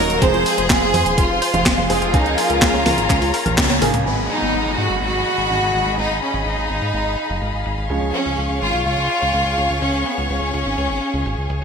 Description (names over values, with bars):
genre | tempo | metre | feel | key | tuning
italo disco | 125 BPM | 4/4 | straight | unclear | A4 = 440 Hz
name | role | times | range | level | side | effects
clear studio violin section | melody | 0.0-11.5 s | Cb4 to C5 | -20 LUFS | equal | ping-pong delay
rich chamber string section | sustained chords | 0.0-11.6 s | Ab4 to Db6 | -24 LUFS | left 2 dB | none
analog pluck | arpeggios | 0.0-4.0 s | C4 to Bb5 | -26 LUFS | left 3 dB | chorus, ping-pong delay
clear grand piano | stabs | 0.0-11.6 s | Ab2 to Bb4 | -26 LUFS | right 4 dB | lush chorus, low-pass filter
chorused synth bass | bass | 0.0-11.6 s | Eb1 to Ab2 | -24 LUFS | equal | tube saturation
clean 12-bit digital drum machine | drums | 0.1-11.6 s | congas, crash cymbal, handclaps, hi-hat, snare drum, toms | -20 LUFS | equal | low-pass filter on hats, small room ambience, low-pass filter on snare, low-pass filter on perc, low-pass filter on toms, low-pass filter on cymbals, gated reverb
electronic kick drum | drums | 0.2-3.7 s | none | -20 LUFS | equal | small room ambience
downlifter | sound effects | 4.1-7.9 s | none | -29 LUFS | left 2 dB | none
room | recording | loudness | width
moderate lush hall reverb, RT60 1.7 s, digital ambience | bright 1980s-style digital production | -16 LUFS | side -6 dB against mid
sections
0.0-4.1 A section; 4.1-11.6 B section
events
band accent 3.6; drum fill 3.8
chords
0.2 Fm; 2.1 Db6; 4.1 Abm7; 7.9 Db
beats
| 0.22 0.70 1.18 1.66 | 2.14 2.62 3.10 3.58 | 4.06 4.54 5.02 5.50 | 5.98 6.46 6.94 7.42 | 7.90 8.38 8.86 9.34 | 9.82 10.30 10.78 11.26